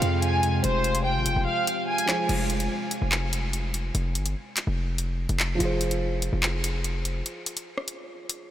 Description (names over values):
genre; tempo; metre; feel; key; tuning
hip hop, drill; 145 BPM; 4/4; half-time; F minor; A4 = 440 Hz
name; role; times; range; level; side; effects
warm studio violin section; melody; 0.0-2.3 s; C5 to Ab5; -27 LUFS; equal; low-pass filter, tape echo
dark concert grand piano; accompaniment; 0.0-2.3, 5.6-8.5 s; F3 to C5; -34 LUFS; right 2 dB; low-pass filter
deep dark ambient pad; sustained chords; 0.0-2.3 s; C3 to F4; -31 LUFS; equal; chorus, built-in reverb
hard-hitting 808-style bass; bass; 0.0-7.2 s; F1 to F2; -27 LUFS; equal; none
drill drum kit; drums; 0.0-8.4 s; crash cymbal, handclaps, hi-hat, rim click; -30 LUFS; left 1 dB; overdrive
room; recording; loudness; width
moderate huge ambient reverb, RT60 5.1 s; dreamy mix soaked in reverb; -24 LUFS; side -12 dB against mid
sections
0.0-2.3 A section; 2.3-8.5 B section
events
kick muted 1.5-2.3; break 2.3-5.6, 7.3-8.5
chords
0.0 Fm; 2.3 N.C.; 5.6 Fm